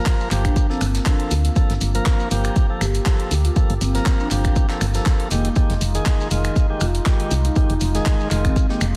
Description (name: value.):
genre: deep house.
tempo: 120 BPM.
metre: 4/4.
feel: swing 54% on 16ths.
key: G phrygian.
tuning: A4 = 441 Hz.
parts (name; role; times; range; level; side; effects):
warm analog pad; sustained chords; 0.0-9.0 s; Ab3 to A5; -35 LUFS; equal; none.
tonewheel organ; stabs; 0.0-8.9 s; Eb3 to Bb4; -29 LUFS; equal; overdrive, tape echo.
electronic kick drum; drums; 0.1-8.7 s; none; -20 LUFS; equal; none.
house drum kit; drums; 0.1-8.9 s; finger snaps, handclaps, hi-hat; -32 LUFS; equal; soft clipping on snare.
modern studio drum kit; drums; 0.1-8.9 s; hi-hat, snare drum; -42 LUFS; equal; none.
shekere; percussion; 0.1-8.9 s; none; -36 LUFS; equal; none.
woody FM bass; bass; 0.3-9.0 s; F1 to D2; -23 LUFS; equal; sidechain pumping.
marimba with soft mallets; melody; 0.4-8.9 s; Bb3 to G4; -32 LUFS; equal; tape echo.
room: light reverb, studio ambience.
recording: dense, heavily limited modern master, vinyl crackle.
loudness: -19 LUFS.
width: mono.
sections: 0.0-9.0 A section.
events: none.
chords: 0.0 Gm9; 5.3 Fm9.